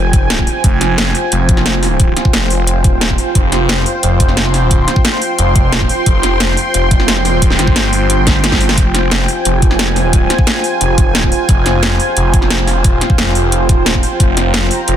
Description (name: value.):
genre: dark technical drum and bass.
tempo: 177 BPM.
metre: 4/4.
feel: straight.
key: F minor.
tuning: A4 = 440 Hz.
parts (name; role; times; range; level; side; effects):
dark analog pad; sustained chords; 0.0-15.0 s; F4 to C6; -17 LUFS; right 1 dB; chorus, sidechain pumping.
phased detuned saw bass; bass; 0.0-15.0 s; Eb1 to G1; -15 LUFS; equal; phaser, overdrive.
drum and bass drum kit; drums; 0.1-14.9 s; hi-hat, snare drum; -16 LUFS; equal; none.
electronic kick drum; drums; 0.1-14.3 s; none; -12 LUFS; equal; none.
room: light reverb, digital ambience.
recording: dense, heavily limited modern master.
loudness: -10 LUFS.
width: side -10 dB against mid.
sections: 0.0-15.0 A section.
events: drum fill 8.3-8.8.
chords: 0.0 Fm.